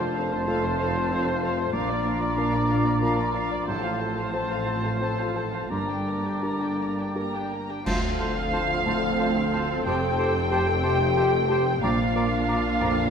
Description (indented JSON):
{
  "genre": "cinematic, emotional film score for orchestra",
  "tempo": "82-96 BPM",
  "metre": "3/4",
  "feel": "rubato",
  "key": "F major, D minor from 7.9 s",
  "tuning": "A4 = 440 Hz",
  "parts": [
    { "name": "muted symphonic violin section", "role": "melody", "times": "0.0-13.1 s", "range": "C5 to Bb5", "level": "-30 LUFS", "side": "equal", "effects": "none" },
    { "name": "mellow silver concert flute", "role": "second line", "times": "0.0-12.9 s", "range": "A5 to Bb5", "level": "-34 LUFS", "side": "left 2 dB", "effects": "none" },
    { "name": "muted symphonic violin section", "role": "second line", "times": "0.0-13.1 s", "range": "F4 to D5", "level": "-36 LUFS", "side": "left 3 dB", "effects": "none" },
    { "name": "warm clarinet", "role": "second line", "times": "0.0-12.9 s", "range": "D4 to G4", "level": "-35 LUFS", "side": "left 3 dB", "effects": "none" },
    { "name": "warm oboe", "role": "second line", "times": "0.0-12.9 s", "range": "C5 to D5", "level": "-32 LUFS", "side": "right 1 dB", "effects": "none" },
    { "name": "dark concert grand piano", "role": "accompaniment", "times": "0.0-13.1 s", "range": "F1 to C5", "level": "-30 LUFS", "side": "equal", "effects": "none" },
    { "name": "muted symphonic viola section", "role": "accompaniment", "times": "0.0-13.1 s", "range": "Bb3 to A4", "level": "-35 LUFS", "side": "equal", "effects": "none" },
    { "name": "mellow French horn section", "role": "sustained chords", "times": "0.0-13.1 s", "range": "D3 to G4", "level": "-31 LUFS", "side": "left 5 dB", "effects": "none" },
    { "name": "muted symphonic cello section", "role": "bass", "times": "0.0-13.1 s", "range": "D2 to Bb2", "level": "-32 LUFS", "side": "right 4 dB", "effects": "none" },
    { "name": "muted symphonic double bass section", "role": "bass", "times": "0.0-13.1 s", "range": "F1 to D2", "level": "-32 LUFS", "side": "right 3 dB", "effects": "none" },
    { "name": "clash cymbals and concert bass drum", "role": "percussion", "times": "7.9-9.2 s", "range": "none", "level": "-35 LUFS", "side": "equal", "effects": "none" }
  ],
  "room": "wet scoring stage reverb, RT60 1.6 s",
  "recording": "none",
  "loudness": "-22 LUFS",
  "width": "side -7 dB against mid",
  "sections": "0.0-7.9 A section; 7.9-13.1 B section",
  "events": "band accent 7.9-8.5",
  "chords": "0.0 F; 1.7 Bb; 3.7 F/A; 5.7 Gm; 7.9 Dm7; 9.9 Fadd9; 11.8 Bb"
}